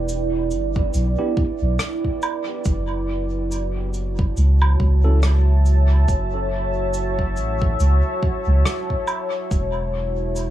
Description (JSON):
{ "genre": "ambient dub", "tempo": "70 BPM", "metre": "4/4", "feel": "swing 57% on 16ths", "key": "unclear", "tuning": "A4 = 439 Hz", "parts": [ { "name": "deep dark ambient pad", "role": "sustained chords", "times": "0.0-10.5 s", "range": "E4 to A5", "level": "-25 LUFS", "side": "right 2 dB", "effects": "chorus, built-in reverb" }, { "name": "soft dub sub bass", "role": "bass", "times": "0.0-10.5 s", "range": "E1 to C#2", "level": "-18 LUFS", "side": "equal", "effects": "none" }, { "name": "cabasa, rim click and woodblock", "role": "drums", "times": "0.1-10.5 s", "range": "none", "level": "-29 LUFS", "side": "right 1 dB", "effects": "dub echo" }, { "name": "electronic kick drum", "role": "drums", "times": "0.8-9.7 s", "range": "none", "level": "-23 LUFS", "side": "equal", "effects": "none" }, { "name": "tine electric piano", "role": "stabs", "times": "1.2-5.2 s", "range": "B3 to A4", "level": "-30 LUFS", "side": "equal", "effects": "vintage 12-bit sampler grit, dub echo" } ], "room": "studio reverb", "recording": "echo-heavy mix, small room ambience", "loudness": "-18 LUFS", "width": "side -13 dB against mid", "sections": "0.0-10.5 A section", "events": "none", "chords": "0.0 Em7; 2.7 F#m7; 9.5 E5", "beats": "0.08 0.94 1.80 | 2.65 3.51 4.37 5.23 | 6.08 6.94 7.80 8.65 | 9.51 10.37" }